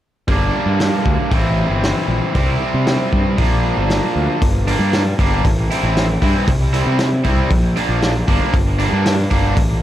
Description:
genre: indie rock.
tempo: 116 BPM.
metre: 4/4.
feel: straight.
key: G minor.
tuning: A4 = 440 Hz.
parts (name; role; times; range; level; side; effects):
cranked stack guitar; riff; 0.3-9.6 s; E3 to E4; -19 LUFS; right 1 dB; overdrive, analog delay.
fuzz picked electric bass; bass; 0.3-9.8 s; G1 to C3; -18 LUFS; equal; overdrive.
loose indie drum kit; drums; 0.3-9.7 s; hi-hat, kick drum, snare drum; -19 LUFS; equal; none.
room: small room ambience.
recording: echo-heavy mix.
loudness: -14 LUFS.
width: side -12 dB against mid.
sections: 0.3-4.4 A section; 4.4-9.8 B section.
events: none.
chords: 0.3 Gm; 1.3 Am7; 2.3 C; 3.4 Bb; 4.4 Gm; 5.4 Am; 6.5 C; 7.5 Bb; 8.5 Gm.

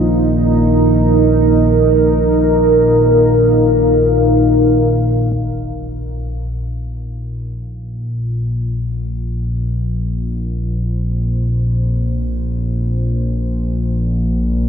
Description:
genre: dark ambient drone.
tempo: free time.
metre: none.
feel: none.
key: unclear.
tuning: A4 = 440 Hz.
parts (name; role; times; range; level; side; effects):
deep dark ambient pad; sustained chords; 0.0-14.7 s; Bb3 to F5; -16 LUFS; right 1 dB; chorus, built-in reverb.
analog drone; drone; 0.0-14.7 s; Bb1 to Bb2; -16 LUFS; left 1 dB; chorus.
impact; percussion; 5.3-5.5 s; none; -35 LUFS; left 1 dB; none.
room: wet cathedral reverb, RT60 5.6 s.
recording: none.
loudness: -13 LUFS.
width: side -7 dB against mid.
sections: 0.0-5.3 A section; 5.3-14.7 B section.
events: fade-in on ambient pad 5.3-14.7.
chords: 0.0 Bb5; 5.3 Bbsus2.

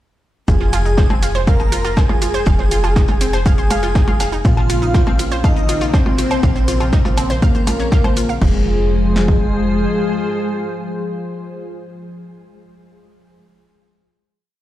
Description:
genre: melodic techno.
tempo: 121 BPM.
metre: 4/4.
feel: straight.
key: F minor.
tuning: A4 = 439 Hz.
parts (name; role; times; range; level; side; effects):
wide unison lead; melody; 0.5-11.7 s; Ab3 to Bb4; -22 LUFS; left 1 dB; sidechain pumping, digital delay.
airy dreamy lead; second line; 0.5-11.7 s; Ab4 to Bb5; -26 LUFS; left 1 dB; chorus, sidechain pumping, digital delay.
analog pluck; arpeggios; 0.5-8.6 s; C4 to F5; -25 LUFS; right 2 dB; chorus, sidechain pumping, digital delay.
plucky analog bass; bass; 0.5-9.9 s; F1 to Bb1; -20 LUFS; equal; sidechain pumping.
cloth-damped thuddy drum kit; drums; 0.5-8.3 s; hi-hat, shaker, snare drum; -33 LUFS; left 1 dB; sidechain pumping on hats, high-pass filter on hats, high-pass filter on snare, sidechain pumping on perc, high-pass filter on perc, high-pass filter on room.
punchy analog drum machine; drums; 0.5-9.4 s; kick drum, snare drum; -16 LUFS; equal; none.
techno drum kit; drums; 0.5-8.5 s; crash cymbal, hi-hat, percussion blips, shaker, woodblock; -25 LUFS; left 1 dB; none.
sweeping resonant pad; sustained chords; 4.4-11.7 s; Db3 to C5; -26 LUFS; left 1 dB; chorus, sidechain pumping.
room: little or no reverb.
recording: played on a big sound system in a bare room, stone room reverb.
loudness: -14 LUFS.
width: side -14 dB against mid.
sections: 0.5-8.4 drop; 8.4-12.4 final chord.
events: drop 0.5-8.4.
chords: 0.5 Fm; 4.4 Bbmadd9; 8.4 Fm.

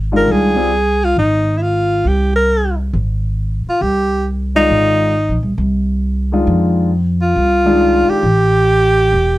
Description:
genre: modal jazz.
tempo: 136 BPM.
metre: 4/4.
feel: swing 66% on 8ths.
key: F dorian.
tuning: A4 = 440 Hz.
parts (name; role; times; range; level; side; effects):
upright bass; bass; 0.0-9.4 s; E1 to F2; -16 LUFS; equal; none.
warm grand piano; accompaniment; 0.1-0.7, 4.6-8.2 s; Eb3 to D5; -16 LUFS; left 2 dB; none.
clear alto saxophone; melody; 0.2-9.4 s; Eb4 to Bb4; -14 LUFS; equal; none.
room: light reverb.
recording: dark, warm production.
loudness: -12 LUFS.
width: side -16 dB against mid.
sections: 0.0-9.4 A section.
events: none.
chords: 0.0 Fm7; 8.2 A7(no3).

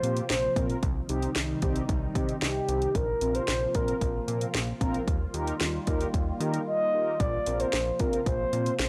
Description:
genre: synth-pop.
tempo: 113 BPM.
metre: 4/4.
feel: straight.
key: unclear.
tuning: A4 = 440 Hz.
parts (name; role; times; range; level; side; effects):
mellow horn-like synth lead; melody; 0.0-8.9 s; G4 to Eb5; -31 LUFS; equal; chorus, tape echo.
mellow synth brass; accompaniment; 0.0-8.7 s; C4 to C5; -37 LUFS; equal; chorus.
phased analog pad; sustained chords; 0.0-8.9 s; C3 to F4; -38 LUFS; equal; phaser, chorus.
fat analog bass; bass; 0.0-8.9 s; Bb1 to Eb3; -34 LUFS; equal; none.
house drum kit; drums; 0.0-8.9 s; hi-hat, kick drum, snare drum; -33 LUFS; equal; overdrive.
room: light reverb.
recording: dry, gritty hardware recording, cassette tape.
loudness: -28 LUFS.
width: mono.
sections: 0.0-8.9 A section.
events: silent gap 6.7-7.2.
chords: 0.0 Bbsus2; 0.8 Cm; 3.0 Bbsus2; 5.1 Ebadd9; 7.2 Bbsus2.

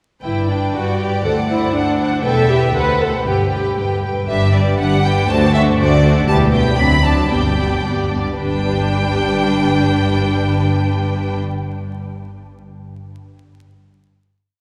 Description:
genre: quick classical-period movement for string orchestra.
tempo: 108-124 BPM.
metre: 2/4.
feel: straight.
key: G major.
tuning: A4 = 440 Hz.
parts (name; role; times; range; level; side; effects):
rich symphonic violin section; melody; 0.2-11.4 s; A4 to B5; -25 LUFS; equal; none.
warm symphonic violin section; second line; 0.2-11.4 s; D4 to G5; -24 LUFS; equal; none.
rich symphonic viola section; accompaniment; 0.2-11.4 s; F#3 to B4; -22 LUFS; equal; none.
rich symphonic cello section; bass; 0.2-11.4 s; D2 to G2; -24 LUFS; equal; none.
warm symphonic double bass section; bass; 0.2-11.4 s; E1 to D2; -22 LUFS; equal; none.
room: wet cathedral reverb, RT60 4.5 s.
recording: recorded in a church or concert hall, vinyl crackle.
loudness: -16 LUFS.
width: mono.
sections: 0.2-4.3 A section; 4.3-8.4 A section; 8.4-10.6 final chord.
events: slowing down 5.8-8.4.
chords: 0.2 G; 1.2 D7; 2.2 Em; 2.7 D7; 3.3 G; 5.3 D7; 6.3 Em; 6.8 D7; 7.3 G.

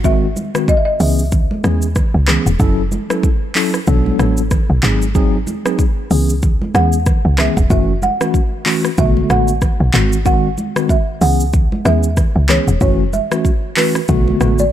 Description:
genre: afrobeats.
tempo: 94 BPM.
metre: 4/4.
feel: swing 58% on 16ths.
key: F# minor.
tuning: A4 = 435 Hz.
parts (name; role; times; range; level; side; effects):
folk marimba with medium mallets; melody; 0.0-1.6, 6.8-14.7 s; B4 to F#5; -20 LUFS; right 2 dB; ping-pong delay.
mellow tine electric piano; accompaniment; 0.0-14.6 s; D3 to A4; -19 LUFS; left 1 dB; medium stereo tremolo.
woody log drum bass; bass; 0.0-14.7 s; E1 to E2; -16 LUFS; equal; none.
deep house drum kit; drums; 0.0-14.7 s; handclaps, hi-hat, kick drum, rim click, shaker; -17 LUFS; equal; none.
congas; percussion; 0.4-14.6 s; none; -25 LUFS; right 2 dB; none.
room: digital ambience.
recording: dark, warm production.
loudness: -12 LUFS.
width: side -11 dB against mid.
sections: 0.0-14.7 A section.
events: none.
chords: 0.0 G#7; 1.0 C#m7; 2.6 F#m7; 3.9 Bm7; 4.8 G#7; 6.1 C#m7; 7.7 F#m7; 9.0 Bm7; 9.9 G#7; 11.2 C#m7; 12.8 F#m7; 14.1 Bm7.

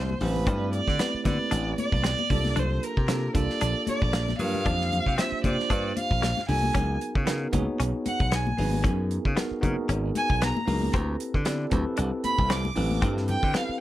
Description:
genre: electric jazz fusion.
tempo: 115 BPM.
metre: 4/4.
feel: swing 56% on 16ths.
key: unclear.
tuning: A4 = 438 Hz.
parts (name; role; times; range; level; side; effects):
warm violin; melody; 0.0-13.8 s; Bb4 to D6; -29 LUFS; right 1 dB; none.
bell-like tine electric piano; accompaniment; 0.0-13.8 s; A3 to D5; -31 LUFS; right 2 dB; medium stereo tremolo.
direct-recorded clean electric guitar; stabs; 0.0-13.7 s; Bb3 to D4; -34 LUFS; left 5 dB; wide subtle chorus.
slap bass; bass; 0.0-13.7 s; G#1 to D3; -28 LUFS; equal; none.
congas; percussion; 0.1-13.4 s; none; -33 LUFS; left 5 dB; none.
damped 70s drum kit; drums; 0.2-13.7 s; hi-hat, kick drum, snare drum; -29 LUFS; equal; none.
room: light reverb.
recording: none.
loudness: -23 LUFS.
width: side -14 dB against mid.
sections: 0.0-13.8 A section.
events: violin solo 0.0-13.8.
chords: 0.0 D13sus4; 2.3 C13sus4; 6.8 C#13sus4; 10.9 D13sus4.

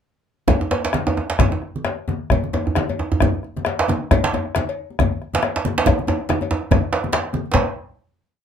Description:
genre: west african traditional, West African drum ensemble.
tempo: 130-149 BPM.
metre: 4/4.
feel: swing 56% on 16ths.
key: none.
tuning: none.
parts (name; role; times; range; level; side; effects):
bombo; percussion; 0.5-7.7 s; none; -21 LUFS; left 2 dB; none.
congas; percussion; 0.5-7.7 s; none; -25 LUFS; right 4 dB; none.
cowbell; percussion; 0.5-7.7 s; none; -28 LUFS; left 6 dB; none.
djembe; percussion; 0.5-7.7 s; none; -25 LUFS; left 4 dB; none.
djembe; percussion; 0.5-7.7 s; none; -21 LUFS; right 4 dB; none.
room: moderate small room ambience, RT60 0.5 s.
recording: minimal, uncompressed stereo recording.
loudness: -18 LUFS.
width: side -8 dB against mid.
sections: 0.5-7.5 A section; 7.5-8.4 final hit.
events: speeding up 0.5-8.4; drum fill 5.9-7.5.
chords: none.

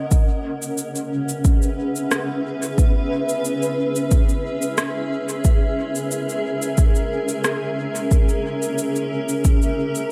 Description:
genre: ambient dub.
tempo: 90 BPM.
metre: 4/4.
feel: straight.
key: C# dorian.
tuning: A4 = 440 Hz.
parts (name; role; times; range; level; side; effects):
granular cloud pad; sustained chords; 0.0-10.1 s; C#4 to F#5; -25 LUFS; equal; built-in reverb.
electronic cabasa and rim click; drums; 0.1-10.1 s; none; -29 LUFS; equal; overdrive, dub echo.
electronic kick drum; drums; 0.1-9.6 s; none; -18 LUFS; equal; none.
room: light reverb.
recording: echo-heavy mix.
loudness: -21 LUFS.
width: mono.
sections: 0.1-10.1 A section.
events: none.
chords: 0.1 C#m7.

